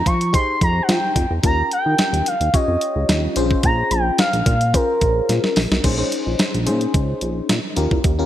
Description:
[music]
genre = early-eighties boogie funk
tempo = 109 BPM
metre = 4/4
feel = straight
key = Bb dorian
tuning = A4 = 440 Hz
[part]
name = expressive portamento lead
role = melody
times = 0.0-5.6 s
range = Bb4 to Db6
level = -20 LUFS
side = equal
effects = chorus, digital delay
[part]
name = chorused synth bass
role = bass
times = 0.0-8.2 s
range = Bb1 to F3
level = -21 LUFS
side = equal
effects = none
[part]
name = crisp 8-bit digital drum machine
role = drums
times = 0.1-8.2 s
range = crash cymbal, hi-hat, kick drum, snare drum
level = -20 LUFS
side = equal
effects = gated reverb
[part]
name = FM electric piano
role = accompaniment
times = 0.3-8.3 s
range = Db4 to Db5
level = -24 LUFS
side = left 3 dB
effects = chorus, phaser
[sound]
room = light reverb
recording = bright 1980s-style digital production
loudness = -16 LUFS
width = side -12 dB against mid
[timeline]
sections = 0.0-5.8 A section; 5.8-8.3 B section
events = drum fill 5.3-5.8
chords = 0.0 Fm9; 1.4 Eb7; 3.4 Bbm9; 5.8 Bbm11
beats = 0.34 0.89 | 1.44 1.99 2.54 3.09 | 3.64 4.19 4.74 5.29 | 5.84 6.39 6.94 7.49 | 8.04

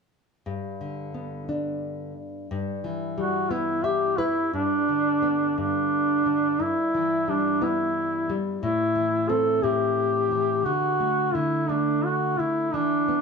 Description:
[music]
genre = children's music, lullaby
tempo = 59 BPM (dotted quarters)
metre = 6/8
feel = rubato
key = G major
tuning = A4 = 441 Hz
[part]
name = nylon-string guitar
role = accompaniment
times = 0.5-13.2 s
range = G2 to E5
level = -29 LUFS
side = left 3 dB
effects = none
[part]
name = warm duduk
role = melody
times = 3.2-13.2 s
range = D4 to A4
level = -23 LUFS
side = right 1 dB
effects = none
[sound]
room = moderate recital hall reverb, RT60 1.8 s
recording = none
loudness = -22 LUFS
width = side -5 dB against mid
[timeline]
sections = 0.5-4.5 A section; 4.5-13.2 B section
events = nylon-string guitar fill 3.5-4.5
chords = 0.5 G; 2.5 Em/G; 4.5 G; 6.6 Em/G; 8.6 Am; 10.7 D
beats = | 0.46 1.49 | 2.50 3.51 | 4.54 5.58 | 6.61 7.62 | 8.62 9.63 | 10.66 11.69 | 12.73

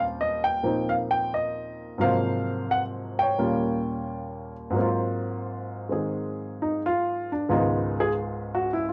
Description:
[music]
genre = solo jazz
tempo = 88 BPM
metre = 4/4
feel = swing 69% on 8ths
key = unclear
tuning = A4 = 440 Hz
[part]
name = warm baby grand piano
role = solo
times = 0.0-8.9 s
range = Db2 to G5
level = -27 LUFS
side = equal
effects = none
[sound]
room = moderate small room reverb, RT60 0.5 s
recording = home recording on cassette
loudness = -27 LUFS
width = mono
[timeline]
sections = 0.0-4.8 A section; 4.8-8.9 B section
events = grand piano solo 4.8-8.9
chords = 0.0 Eb13; 2.0 Ab13; 3.4 Eb9; 4.8 Ab13; 7.5 Db9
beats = 0.64 1.32 | 2.01 2.69 3.38 4.06 | 4.75 5.44 6.12 6.81 | 7.49 8.18 8.87

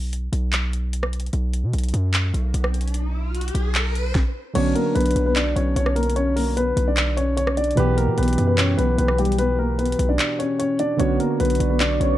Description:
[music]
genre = hip hop, trap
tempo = 149 BPM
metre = 4/4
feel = half-time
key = B harmonic minor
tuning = A4 = 440 Hz
[part]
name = hard-hitting 808-style bass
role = bass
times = 0.0-12.2 s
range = B1 to B2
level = -22 LUFS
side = equal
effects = none
[part]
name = trap drum kit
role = drums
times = 0.1-12.1 s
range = crash cymbal, handclaps, hi-hat, kick drum, rim click, snare drum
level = -26 LUFS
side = equal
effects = none
[part]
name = riser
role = sound effects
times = 2.0-4.2 s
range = none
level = -33 LUFS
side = left 1 dB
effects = none
[part]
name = soft electric-piano-like synth keys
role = accompaniment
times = 4.5-12.2 s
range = B2 to G4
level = -25 LUFS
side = right 3 dB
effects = chorus
[part]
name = dark grand piano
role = melody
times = 4.6-12.2 s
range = G3 to D5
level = -22 LUFS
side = left 2 dB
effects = ping-pong delay
[part]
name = deep dark ambient pad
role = sustained chords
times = 11.6-12.2 s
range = B4 to C#6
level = -30 LUFS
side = right 3 dB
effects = chorus, built-in reverb
[sound]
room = little or no reverb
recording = dark, warm production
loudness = -19 LUFS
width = side -13 dB against mid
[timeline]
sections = 0.0-4.6 A section; 4.6-12.2 B section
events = break 0.0-4.6; riser 2.0-4.6; kick muted 10.2-11.0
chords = 0.0 N.C.; 1.3 B5; 4.6 Bmadd9; 7.8 Em/B; 11.0 Bmadd9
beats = 0.12 0.53 0.93 | 1.33 1.73 2.14 2.54 | 2.94 3.35 3.75 4.15 | 4.55 4.96 5.36 5.76 | 6.16 6.57 6.97 7.37 | 7.78 8.18 8.58 8.98 | 9.38 9.79 10.19 10.59 | 11.00 11.40 11.80

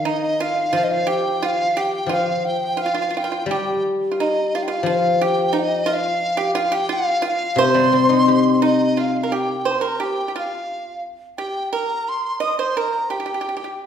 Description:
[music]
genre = chinese traditional, Chinese chamber ensemble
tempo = 88 BPM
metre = 2/4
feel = rubato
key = unclear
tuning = A4 = 438 Hz
[part]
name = mellow hollow large dizi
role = melody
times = 0.0-13.8 s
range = Eb5 to Eb6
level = -22 LUFS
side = right 1 dB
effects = none
[part]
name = pipa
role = second line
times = 0.0-13.7 s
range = Eb4 to Eb5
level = -24 LUFS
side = right 4 dB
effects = none
[part]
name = guzheng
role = accompaniment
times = 0.0-9.7 s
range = C3 to G4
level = -21 LUFS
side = left 3 dB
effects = none
[sound]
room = wet recital hall reverb, RT60 1.4 s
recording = heard from further back in the room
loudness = -18 LUFS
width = side -8 dB against mid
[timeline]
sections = 0.0-9.0 A section; 9.0-13.9 B section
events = none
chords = none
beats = 0.07 | 0.75 1.43 | 2.11 2.79 | 3.49 4.19 | 4.87 5.56 | 6.24 6.91 | 7.59 8.28 | 8.98 9.68 | 10.37 11.05 | 11.73 12.41 | 13.10 13.80

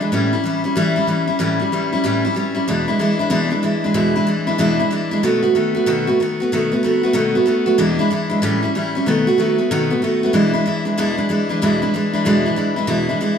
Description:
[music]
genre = rock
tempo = 188 BPM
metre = 4/4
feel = swing 64% on 8ths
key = E mixolydian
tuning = A4 = 440 Hz
[part]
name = picked steel-string acoustic guitar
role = solo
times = 0.0-13.4 s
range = E2 to F#4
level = -16 LUFS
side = equal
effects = none
[sound]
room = moderate large studio reverb, RT60 1.1 s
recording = band playing live in one room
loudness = -16 LUFS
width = side -7 dB against mid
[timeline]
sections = 0.0-10.3 A section; 10.3-13.4 B section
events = none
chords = 0.1 A7; 2.7 E7; 5.2 B7; 7.8 E7; 8.4 A7; 9.1 B7; 10.3 E7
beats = | 0.12 0.44 0.76 1.08 | 1.40 1.72 2.04 2.36 | 2.68 3.00 3.32 3.64 | 3.96 4.28 4.60 4.92 | 5.24 5.55 5.87 6.19 | 6.51 6.83 7.15 7.47 | 7.79 8.11 8.43 8.75 | 9.07 9.39 9.71 10.03 | 10.35 10.67 10.99 11.31 | 11.63 11.95 12.27 12.59 | 12.91 13.23

